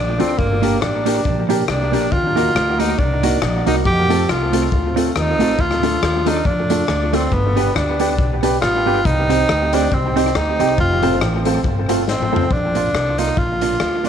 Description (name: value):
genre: ska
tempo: 139 BPM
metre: 4/4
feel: swing 57% on 8ths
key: Bb major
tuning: A4 = 440 Hz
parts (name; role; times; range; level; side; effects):
- clear tenor saxophone; melody; 0.0-14.1 s; Bb3 to G4; -20 LUFS; equal; none
- upright bass; bass; 0.0-14.1 s; F1 to F2; -21 LUFS; equal; none
- hollow-body jazz guitar; accompaniment; 0.2-14.1 s; A3 to G4; -22 LUFS; right 9 dB; tape echo
- dark upright piano; stabs; 0.2-12.4 s; A3 to D5; -24 LUFS; left 8 dB; tape echo
- raw garage drum kit; drums; 0.2-14.1 s; hi-hat, kick drum, rim click, snare drum, toms; -23 LUFS; left 3 dB; tape echo
room: moderate echo chamber reverb, RT60 1.9 s, small room ambience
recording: 1960s-style stereo with parts hard left and right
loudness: -15 LUFS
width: side -8 dB against mid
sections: 0.0-12.5 A section; 12.5-14.1 B section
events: drum fill 12.1-12.5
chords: 0.4 Gm; 2.1 Ebm; 3.9 F; 5.6 Dm; 7.3 G; 9.1 Cm; 10.8 F; 12.5 Bb